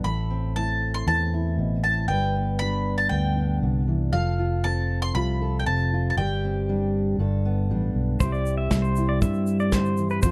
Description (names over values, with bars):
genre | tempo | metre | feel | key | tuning
acoustic folk duo or small band | 118 BPM | 4/4 | straight | C major | A4 = 440 Hz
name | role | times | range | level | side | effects
mandolin | melody | 0.0-7.2 s | F5 to C6 | -30 LUFS | equal | none
fingerpicked steel-string acoustic guitar | accompaniment | 0.0-10.3 s | G2 to B4 | -30 LUFS | equal | none
fingered electric bass | bass | 0.0-10.3 s | F1 to G2 | -27 LUFS | equal | none
pedal steel guitar | second line | 8.2-10.3 s | B4 to E5 | -32 LUFS | equal | none
soft brush drum kit | drums | 8.2-10.3 s | kick drum, snare drum | -25 LUFS | equal | none
egg shaker | percussion | 8.2-10.3 s | none | -44 LUFS | equal | none
room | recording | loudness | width
little or no reverb | dark, warm production | -24 LUFS | mono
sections
0.0-8.2 A section; 8.2-10.3 B section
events
pedal steel guitar solo 8.2-10.3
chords
0.0 Am; 2.1 G; 4.1 F; 6.2 Gsus4; 7.2 Gadd9; 8.2 C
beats
| 0.04 0.56 1.07 1.58 | 2.09 2.60 3.11 3.62 | 4.13 4.64 5.16 5.66 | 6.17 6.68 7.19 7.70 | 8.21 8.71 9.22 9.73 | 10.23